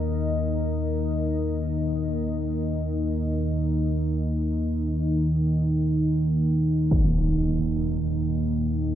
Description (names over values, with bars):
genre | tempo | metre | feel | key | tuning
dark ambient drone | free time | none | none | unclear | A4 = 440 Hz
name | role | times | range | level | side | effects
deep dark ambient pad | sustained chords | 0.0-8.9 s | Bb3 to Eb5 | -28 LUFS | left 1 dB | chorus, built-in reverb
deep rumbling drone | drone | 0.0-8.9 s | Eb2 to Eb3 | -24 LUFS | right 1 dB | built-in reverb
impact | percussion | 6.9-7.1 s | none | -27 LUFS | equal | low-pass filter on sfx
room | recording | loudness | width
wet huge ambient reverb, RT60 7.8 s | dark, warm production | -22 LUFS | side -11 dB against mid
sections
0.0-8.9 A section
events
none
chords
0.0 Eb5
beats
free time